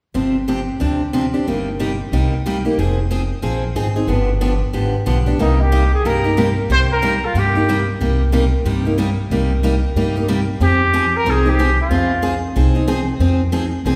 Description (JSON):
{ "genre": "acoustic string swing (jazz manouche)", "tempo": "184 BPM", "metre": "4/4", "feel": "swing 60% on 8ths", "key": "C minor", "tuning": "A4 = 440 Hz", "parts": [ { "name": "picked steel-string acoustic guitar", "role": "accompaniment", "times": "0.1-14.0 s", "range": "C3 to Ab4", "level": "-21 LUFS", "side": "equal", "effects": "none" }, { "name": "upright bass", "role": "bass", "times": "0.1-14.0 s", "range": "F1 to G2", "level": "-21 LUFS", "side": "equal", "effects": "none" }, { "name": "warm trumpet", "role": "melody", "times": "5.4-7.9, 10.6-12.4 s", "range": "Eb4 to C5", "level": "-21 LUFS", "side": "equal", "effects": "none" } ], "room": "wet recital hall reverb, RT60 1.7 s", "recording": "recorded in a church or concert hall", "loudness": "-17 LUFS", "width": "mono", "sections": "0.2-5.4 A section; 5.4-14.0 B section", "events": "none", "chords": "0.2 G7sus4; 1.5 Cm7/G; 2.8 Fm7; 4.1 G7; 5.4 Cm7; 10.6 Fm9" }